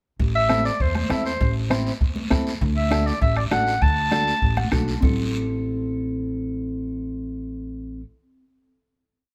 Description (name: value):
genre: latin, cumbia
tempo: 199 BPM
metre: 4/4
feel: straight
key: A dorian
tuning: A4 = 440 Hz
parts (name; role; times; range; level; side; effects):
- upright bass; bass; 0.2-8.0 s; A1 to E2; -28 LUFS; equal; none
- bombo; percussion; 0.2-5.1 s; none; -26 LUFS; equal; none
- guiro; percussion; 0.2-5.1 s; none; -38 LUFS; equal; none
- clear clarinet; melody; 0.4-4.7 s; C5 to A5; -26 LUFS; equal; none
- clean electric guitar; accompaniment; 0.5-8.0 s; C4 to A5; -29 LUFS; equal; none
- congas; percussion; 0.5-5.1 s; none; -33 LUFS; equal; none
room: light reverb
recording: none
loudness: -23 LUFS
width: mono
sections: 0.2-5.0 A section; 5.0-7.4 final chord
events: clean electric guitar fill 4.4-5.0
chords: 0.2 Am; 2.6 D; 5.0 Am